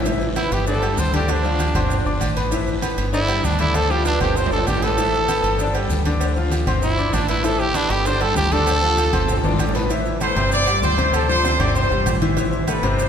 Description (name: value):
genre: latin, salsa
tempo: 195 BPM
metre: 4/4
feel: straight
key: A minor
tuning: A4 = 441 Hz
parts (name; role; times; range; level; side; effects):
- bright grand piano; accompaniment; 0.0-13.1 s; C3 to D6; -24 LUFS; left 3 dB; none
- deep dub fingered electric bass; bass; 0.0-13.1 s; G1 to D2; -22 LUFS; equal; none
- bongos and cowbell; percussion; 0.0-13.1 s; none; -30 LUFS; left 2 dB; none
- agogo bells and timbales; percussion; 0.1-13.0 s; none; -29 LUFS; right 4 dB; none
- congas; percussion; 0.1-13.1 s; none; -29 LUFS; left 1 dB; none
- guiro; percussion; 0.1-9.9 s; none; -37 LUFS; left 3 dB; none
- maracas; percussion; 0.1-13.1 s; none; -38 LUFS; right 5 dB; none
- growling trumpet; melody; 0.4-9.4 s; D4 to C5; -22 LUFS; right 2 dB; none
- clear trumpet section; melody; 10.2-13.1 s; A4 to D6; -22 LUFS; equal; none
room: wet cathedral reverb, RT60 4.2 s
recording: recorded in a church or concert hall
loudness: -17 LUFS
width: side -8 dB against mid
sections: 0.1-9.9 A section; 9.9-13.1 B section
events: trumpet solo 0.1-9.9; drum fill 4.1-5.0, 9.3-9.9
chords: 0.1 Asus2; 0.7 G5; 1.3 Dm7; 1.9 Gsus4; 2.5 Asus2; 3.1 G5; 3.7 Dm7; 4.4 Gsus4; 5.0 Asus2; 5.6 G5; 6.2 Dm7; 6.8 Gsus4; 7.4 Asus2; 8.1 G5; 8.7 Dm7; 9.3 Gsus4; 9.9 Amadd9; 10.5 Gsus4; 11.1 Dm7; 11.8 Gsus4; 12.4 Amadd9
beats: | 0.06 0.36 0.67 0.98 | 1.29 1.59 1.90 2.21 | 2.52 2.82 3.13 3.44 | 3.75 4.05 4.36 4.67 | 4.98 5.29 5.59 5.90 | 6.21 6.52 6.82 7.13 | 7.44 7.75 8.05 8.36 | 8.67 8.98 9.29 9.60 | 9.90 10.21 10.52 10.83 | 11.13 11.44 11.75 12.06 | 12.37 12.68 12.98